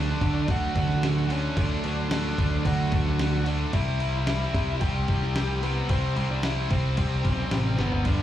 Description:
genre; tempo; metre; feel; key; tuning
quiet-loud alternative rock; 111 BPM; 4/4; straight; unclear; A4 = 442 Hz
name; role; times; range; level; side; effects
dark smooth lead guitar; melody; 0.0-8.2 s; B3 to G5; -33 LUFS; left 2 dB; overdrive, slapback echo
distorted electric guitar; riff; 0.0-8.2 s; G2 to D4; -35 LUFS; right 10 dB; overdrive
sludgy distorted guitar; riff; 0.0-8.2 s; G2 to E4; -33 LUFS; right 1 dB; none
tight distorted guitar; riff; 0.0-8.2 s; G2 to D4; -33 LUFS; left 10 dB; distortion, slapback echo
modern bright picked electric bass; bass; 0.0-8.2 s; G1 to D3; -27 LUFS; right 1 dB; none
dusty soul sampler-style drum kit; drums; 0.2-8.2 s; crash cymbal, kick drum, snare drum, toms; -29 LUFS; equal; none
room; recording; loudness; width
little or no reverb; live gig heard through the venue's PA, club reverb; -23 LUFS; side -12 dB against mid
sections
0.0-8.2 A section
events
drum fill 7.8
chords
0.0 D; 3.7 Cmaj7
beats
0.48 1.02 | 1.57 2.11 2.65 3.19 | 3.73 4.27 4.81 5.35 | 5.89 6.44 6.98 7.52 | 8.06

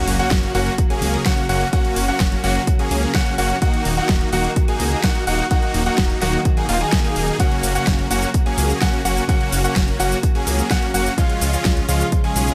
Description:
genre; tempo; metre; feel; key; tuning
EDM, festival progressive house; 127 BPM; 4/4; straight; F# major; A4 = 440 Hz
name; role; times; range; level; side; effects
picked plugged-in steel-string acoustic guitar; accompaniment; 0.0-12.5 s; C#3 to F#4; -28 LUFS; equal; vintage 12-bit sampler grit, sidechain pumping
clear baby grand piano; arpeggios; 0.0-12.5 s; E#5 to G#5; -28 LUFS; equal; sidechain pumping, dub echo
supersaw chords; riff; 0.0-12.5 s; G#3 to G#4; -26 LUFS; equal; sidechain pumping, dub echo
sub drop; sound effects; 0.0-1.7 s; none; -35 LUFS; equal; none
detuned saw bass; bass; 0.1-12.5 s; D#1 to C#2; -25 LUFS; equal; chorus, sidechain pumping
big-room dance drum kit; drums; 0.1-12.5 s; cabasa, hi-hat, snare drum; -27 LUFS; equal; none
electronic kick drum; drums; 0.3-12.2 s; none; -21 LUFS; equal; none
room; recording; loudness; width
little or no reverb; none; -19 LUFS; mono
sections
0.0-12.5 A section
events
impact 0.0-1.7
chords
0.0 F#; 3.6 D#m; 7.4 F#; 11.2 C#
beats
0.31 0.78 1.26 | 1.73 2.20 2.67 3.15 | 3.62 4.09 4.56 5.04 | 5.51 5.98 6.45 6.93 | 7.40 7.87 8.34 8.82 | 9.29 9.76 10.23 10.71 | 11.18 11.65 12.12

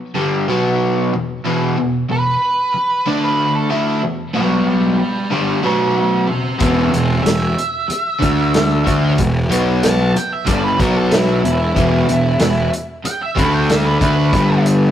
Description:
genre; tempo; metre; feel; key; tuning
blues rock power trio and southern rock; 93 BPM; 4/4; straight; E minor; A4 = 440 Hz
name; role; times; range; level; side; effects
crunchy overdriven guitar; riff; 0.1-14.9 s; E2 to D4; -17 LUFS; equal; none
octave-fuzz lead guitar; melody; 2.1-14.6 s; D4 to A5; -20 LUFS; right 2 dB; distortion
fuzz picked electric bass; bass; 6.6-14.9 s; E1 to D2; -18 LUFS; equal; overdrive
vintage drum kit; drums; 6.6-14.8 s; hi-hat, kick drum, snare drum; -20 LUFS; equal; none
room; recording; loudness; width
moderate stone room reverb, RT60 1.5 s; rough rehearsal-room recording, tube saturation; -14 LUFS; side -10 dB against mid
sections
0.0-14.9 A section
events
none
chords
0.5 B5; 1.1 E5; 3.1 D5; 3.7 E5; 4.3 B5; 5.0 Em (rootless); 5.6 B5; 6.3 Em; 8.2 D5; 8.9 E5; 9.5 B5; 10.1 Em; 10.8 B5; 11.4 E5; 13.4 D5; 14.3 G5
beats
0.16 0.80 | 1.45 2.09 2.74 3.38 | 4.03 4.67 5.32 5.96 | 6.61 7.25 7.89 8.54 | 9.18 9.82 10.47 11.11 | 11.75 12.40 13.04 13.68 | 14.32

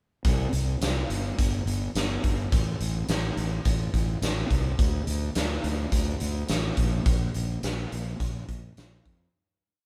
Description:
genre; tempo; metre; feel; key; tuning
classic rock; 106 BPM; 4/4; straight; unclear; A4 = 438 Hz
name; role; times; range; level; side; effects
big rock drum kit; drums; 0.2-9.2 s; hi-hat, kick drum, snare drum, tambourine; -30 LUFS; equal; none
fuzz fingered electric bass; bass; 0.3-9.3 s; G1 to F2; -31 LUFS; equal; overdrive
room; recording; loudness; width
light reverb; band playing live in one room; -27 LUFS; mono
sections
0.2-9.3 verse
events
fade-out 7.1-9.3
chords
none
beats
| 0.25 0.82 1.38 1.95 | 2.52 3.09 3.65 4.22 | 4.79 5.36 5.92 6.49 | 7.06 7.63 8.20 8.77

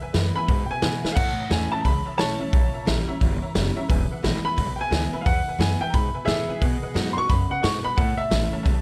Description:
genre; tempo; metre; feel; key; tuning
rockabilly; 176 BPM; 4/4; swing 65% on 8ths; E major; A4 = 440 Hz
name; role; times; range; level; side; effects
honky-tonk upright piano; accompaniment; 0.0-8.8 s; B4 to B5; -39 LUFS; equal; none
picked steel-string acoustic guitar; accompaniment; 0.0-8.8 s; E2 to F#4; -33 LUFS; equal; none
upright bass; bass; 0.0-8.8 s; E1 to B2; -29 LUFS; equal; none
vintage drum kit; drums; 0.1-8.8 s; crash cymbal, hi-hat, kick drum, snare drum; -27 LUFS; equal; none
warm upright piano; melody; 0.4-8.5 s; G#4 to C#6; -29 LUFS; equal; none
room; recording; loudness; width
studio ambience; none; -23 LUFS; mono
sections
0.0-8.8 A section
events
upright piano solo 0.0-8.8; drum fill 1.0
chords
0.0 E; 1.2 A; 2.5 A#dim7; 3.9 E; 6.6 B; 8.0 A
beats
0.14 0.48 0.82 | 1.16 1.50 1.84 2.19 | 2.53 2.87 3.21 3.55 | 3.89 4.23 4.57 4.91 | 5.25 5.59 5.93 6.27 | 6.62 6.96 7.29 7.63 | 7.97 8.31 8.65

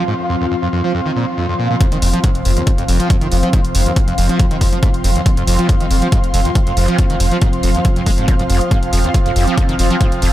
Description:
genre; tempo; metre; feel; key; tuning
driving peak-time techno; 139 BPM; 4/4; straight; unclear; A4 = 442 Hz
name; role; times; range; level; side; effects
screaming distorted acid line; riff; 0.0-10.3 s; Eb2 to Ab3; -20 LUFS; equal; distortion, lush chorus, sidechain pumping, analog delay
analog drone; drone; 0.0-10.3 s; F3 to C4; -23 LUFS; left 1 dB; chorus, sidechain pumping
ethereal airy pad; texture; 0.0-10.3 s; C4 to F6; -22 LUFS; right 2 dB; ensemble chorus, built-in reverb, tremolo, sidechain pumping
electronic hi-hat; drums; 1.8-10.3 s; none; -25 LUFS; equal; none
electronic kick drum; drums; 1.8-10.1 s; none; -15 LUFS; equal; none
saturated sub bass; bass; 1.9-10.3 s; F1; -17 LUFS; equal; sidechain pumping, low-pass filter
room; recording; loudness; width
light reverb; none; -13 LUFS; side -14 dB against mid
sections
0.0-1.8 A section; 1.8-10.3 B section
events
drop 1.8-10.3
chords
0.0 F5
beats
| 0.08 0.51 0.94 1.37 | 1.81 2.24 2.67 3.10 | 3.53 3.96 4.40 4.83 | 5.26 5.69 6.12 6.55 | 6.99 7.42 7.85 8.28 | 8.71 9.14 9.58 10.01

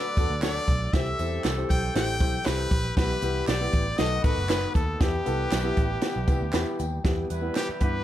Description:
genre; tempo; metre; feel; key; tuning
uptempo 1960s-style soul; 118 BPM; 4/4; straight; E minor; A4 = 440 Hz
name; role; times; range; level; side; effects
brilliant trumpet; melody; 0.0-8.0 s; G4 to G5; -31 LUFS; left 2 dB; slapback echo, plate reverb
glockenspiel with rubber mallets; second line; 0.0-8.0 s; G5 to B6; -41 LUFS; right 1 dB; none
mellow horn section; second line; 0.0-8.0 s; D#3 to B4; -37 LUFS; left 1 dB; none
warm upright piano; accompaniment; 0.0-7.9 s; B3 to B5; -32 LUFS; left 2 dB; none
percussive tonewheel organ; sustained chords; 0.0-8.0 s; D3 to G4; -39 LUFS; right 1 dB; none
vintage muted picked electric bass; bass; 0.2-8.0 s; F#1 to G2; -30 LUFS; equal; none
compact cocktail drum kit; drums; 0.2-7.9 s; hi-hat, kick drum, snare drum; -26 LUFS; right 1 dB; none
tambourine and handclaps; percussion; 0.2-7.7 s; none; -41 LUFS; right 2 dB; none
room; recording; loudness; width
light reverb; none; -23 LUFS; side -12 dB against mid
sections
0.0-7.0 A section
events
upright piano fill 6.3-7.0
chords
0.0 D; 0.9 C; 3.0 Em/B; 4.0 B7; 5.0 Em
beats
0.43 | 0.94 1.45 1.96 2.47 | 2.98 3.49 4.00 4.50 | 5.01 5.52 6.03 6.54 | 7.05 7.56

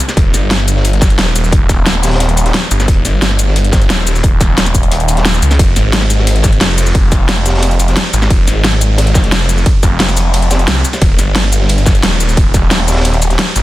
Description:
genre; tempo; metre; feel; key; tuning
dark technical drum and bass; 177 BPM; 4/4; straight; unclear; A4 = 440 Hz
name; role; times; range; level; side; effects
crunchy breakbeat drum kit; drums; 0.0-13.6 s; hi-hat, snare drum; -23 LUFS; equal; high-pass filter on hats, studio reverb, high-pass filter on snare, high-pass filter on room
dubstep drum kit; drums; 0.0-13.6 s; cabasa, hi-hat, ride cymbal, snare drum; -15 LUFS; equal; studio reverb
snarling distorted saw bass; bass; 0.2-13.6 s; Eb1 to Db2; -12 LUFS; equal; distortion, sidechain pumping
electronic kick drum; drums; 0.2-12.6 s; none; -12 LUFS; equal; studio reverb
room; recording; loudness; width
little or no reverb; dense, heavily limited modern master; -9 LUFS; side -16 dB against mid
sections
0.0-13.6 A section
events
none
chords
none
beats
| 0.17 0.51 0.85 1.19 | 1.52 1.86 2.20 2.54 | 2.88 3.22 3.56 3.90 | 4.24 4.58 4.92 5.25 | 5.59 5.93 6.27 6.61 | 6.95 7.29 7.63 7.97 | 8.30 8.64 8.98 9.32 | 9.66 10.00 10.34 10.68 | 11.02 11.36 11.70 12.03 | 12.37 12.71 13.05 13.39

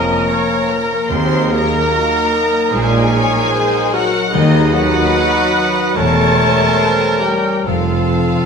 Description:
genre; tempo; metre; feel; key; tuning
classical; 74 BPM; 4/4; rubato; unclear; A4 = 436 Hz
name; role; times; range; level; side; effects
warm symphonic violin section; melody; 0.0-8.5 s; D#5 to C6; -21 LUFS; left 1 dB; none
mellow clarinet; second line; 0.0-8.5 s; D#4 to C5; -23 LUFS; left 1 dB; none
warm symphonic violin section; second line; 0.0-8.5 s; D#4 to C5; -24 LUFS; left 4 dB; none
rich symphonic viola section; accompaniment; 0.0-8.5 s; Gb4 to Eb5; -22 LUFS; right 1 dB; none
mellow French horn section; sustained chords; 0.0-8.5 s; D#3 to C4; -22 LUFS; left 4 dB; none
warm trombone section; sustained chords; 0.0-8.5 s; F3 to D#4; -23 LUFS; right 3 dB; none
concert harp; arpeggios; 0.0-8.5 s; Bb2 to Eb6; -24 LUFS; left 8 dB; none
clear trumpet; stabs; 0.0-8.5 s; A4 to B4; -20 LUFS; right 2 dB; none
rich symphonic cello section; bass; 0.0-8.4 s; Eb2 to Bb2; -21 LUFS; right 2 dB; none
warm studio double bass section; bass; 0.0-8.4 s; E1 to Eb2; -22 LUFS; right 4 dB; none
room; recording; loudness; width
wet recital hall reverb, RT60 1.5 s; none; -12 LUFS; side -6 dB against mid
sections
0.0-8.5 A section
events
none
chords
0.0 Bbm; 1.1 Ebm; 4.3 B/D#; 6.0 Edim7; 7.7 F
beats
0.28 | 1.10 1.92 2.72 3.53 | 4.33 5.13 5.96 6.77 | 7.65

